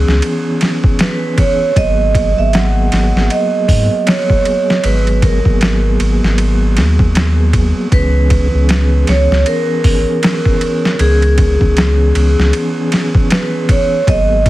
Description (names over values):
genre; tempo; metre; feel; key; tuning
trip hop; 78 BPM; 4/4; swing 60% on 16ths; unclear; A4 = 442 Hz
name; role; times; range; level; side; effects
vibraphone with medium hard mallets; melody; 0.0-14.5 s; G#4 to F#5; -17 LUFS; right 2 dB; vintage 12-bit sampler grit, dub echo
mellow tonewheel organ; accompaniment; 0.0-14.5 s; E3 to G#4; -19 LUFS; equal; fast rotary speaker, tremolo, low-pass filter
warm sub bass; bass; 0.0-14.5 s; G#1 to G#2; -13 LUFS; equal; tube saturation
boom bap sampler-style drum kit; drums; 0.1-14.5 s; hi-hat, kick drum, ride cymbal, snare drum; -15 LUFS; equal; overdrive, studio reverb
room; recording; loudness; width
digital ambience; heavily compressed radio sound, vinyl crackle; -10 LUFS; side -16 dB against mid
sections
0.0-14.5 A section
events
none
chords
0.0 C#m7; 1.8 G#m9; 7.9 C#m7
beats
0.23 1.00 | 1.77 2.54 3.30 4.07 | 4.84 5.61 6.38 7.15 | 7.92 8.69 9.46 10.23 | 11.00 11.77 12.54 13.30 | 14.07